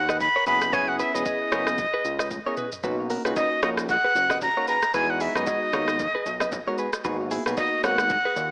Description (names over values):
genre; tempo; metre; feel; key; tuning
afrobeats; 114 BPM; 4/4; swing 58% on 16ths; B major; A4 = 439 Hz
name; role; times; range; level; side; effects
breathy bright jazz flute; melody; 0.0-8.5 s; D#5 to B5; -23 LUFS; equal; none
fat analog bass; bass; 0.0-8.5 s; E1 to F#2; -32 LUFS; equal; none
direct-recorded clean electric guitar; riff; 0.1-8.3 s; E4 to D#5; -29 LUFS; right 1 dB; digital delay
afro-pop drum kit; drums; 0.1-8.5 s; hi-hat, kick drum, rim click, shaker, toms; -31 LUFS; equal; none
bell-like tine electric piano; accompaniment; 0.5-8.1 s; G#3 to G#4; -30 LUFS; equal; phaser
congas and bongos; percussion; 2.8-8.5 s; none; -36 LUFS; equal; none
room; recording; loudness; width
light reverb, digital ambience; AM radio sound; -21 LUFS; side -30 dB against mid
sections
0.0-8.5 A section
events
drum fill 2.3-2.8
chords
0.5 F#7sus4; 2.8 Bmaj9; 4.9 Emaj7; 7.0 G#m7